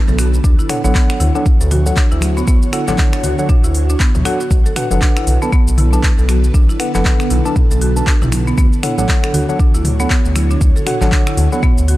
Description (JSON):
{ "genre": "afro house", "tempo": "118 BPM", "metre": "4/4", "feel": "swing 59% on 16ths", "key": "unclear", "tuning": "A4 = 440 Hz", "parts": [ { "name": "ethereal airy pad", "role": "sustained chords", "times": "0.0-12.0 s", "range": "D3 to C#5", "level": "-25 LUFS", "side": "right 1 dB", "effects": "ensemble chorus, built-in reverb, phaser, sidechain pumping" }, { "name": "buzzing marimba with hard mallets", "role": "arpeggios", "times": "0.1-12.0 s", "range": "B3 to A4", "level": "-23 LUFS", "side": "right 2 dB", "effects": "sidechain pumping, analog delay" }, { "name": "smooth synth bass", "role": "bass", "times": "0.1-12.0 s", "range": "F#1 to D2", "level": "-16 LUFS", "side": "equal", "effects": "tube saturation, sidechain pumping" }, { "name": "deep house drum kit", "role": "drums", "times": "0.1-12.0 s", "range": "finger snaps, handclaps, hi-hat, shaker, toms", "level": "-23 LUFS", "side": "equal", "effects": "small room ambience" }, { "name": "congas", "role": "percussion", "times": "0.1-11.6 s", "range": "none", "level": "-25 LUFS", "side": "equal", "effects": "none" }, { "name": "electronic kick drum", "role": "drums", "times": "0.4-11.7 s", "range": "none", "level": "-13 LUFS", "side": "equal", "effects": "small room ambience" }, { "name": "mellow tine electric piano", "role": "stabs", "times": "0.7-11.6 s", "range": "D4 to A5", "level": "-22 LUFS", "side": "left 1 dB", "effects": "medium stereo tremolo, sidechain pumping, analog delay" } ], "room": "little or no reverb", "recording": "dry, gritty hardware recording, transformer saturation", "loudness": "-12 LUFS", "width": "side -16 dB against mid", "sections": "0.0-12.0 A section", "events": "none", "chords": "0.4 Dmaj7; 4.5 Bm7; 8.6 Dmaj7", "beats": "| 0.44 0.95 1.46 1.97 | 2.47 2.98 3.49 4.00 | 4.51 5.02 5.53 6.03 | 6.54 7.05 7.56 8.07 | 8.58 9.09 9.59 10.10 | 10.61 11.12 11.63" }